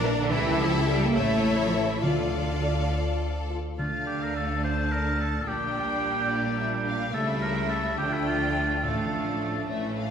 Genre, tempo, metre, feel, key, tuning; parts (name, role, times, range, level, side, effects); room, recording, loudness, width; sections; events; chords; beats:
quick classical-period movement for symphony orchestra; 70 BPM (dotted quarters); 6/8; straight; D minor; A4 = 440 Hz
rich studio violin section; melody; 0.0-10.1 s; D5 to A5; -36 LUFS; left 6 dB
clear studio violin section; second line; 0.0-10.1 s; A3 to D5; -32 LUFS; left 1 dB
clear studio viola section; accompaniment; 0.0-10.1 s; E3 to F4; -32 LUFS; equal
mellow French horn section; sustained chords; 0.0-3.6 s; D4 to Bb4; -36 LUFS; left 5 dB
clear studio cello section; bass; 0.0-10.1 s; A2 to Bb3; -31 LUFS; right 1 dB
rich studio double bass section; bass; 0.0-10.1 s; A1 to D2; -30 LUFS; right 1 dB
timpani; percussion; 2.0-4.6, 8.8-9.7 s; A2 to D3; -34 LUFS; equal
warm oboe; second line; 3.8-9.7 s; E4 to C5; -29 LUFS; right 1 dB
wet scoring stage reverb, RT60 1.9 s; recorded in a church or concert hall; -24 LUFS; side -8 dB against mid
0.0-3.8 A section; 3.8-10.1 A section
0.3 A7/C#; 1.2 A; 2.0 Dm; 5.5 Gm/Bb; 7.1 A7/C#; 8.0 Dm; 8.8 Dm/A
| 0.32 1.16 | 2.04 2.91 | 3.78 4.64 | 5.48 6.31 | 7.15 7.99 | 8.84 9.70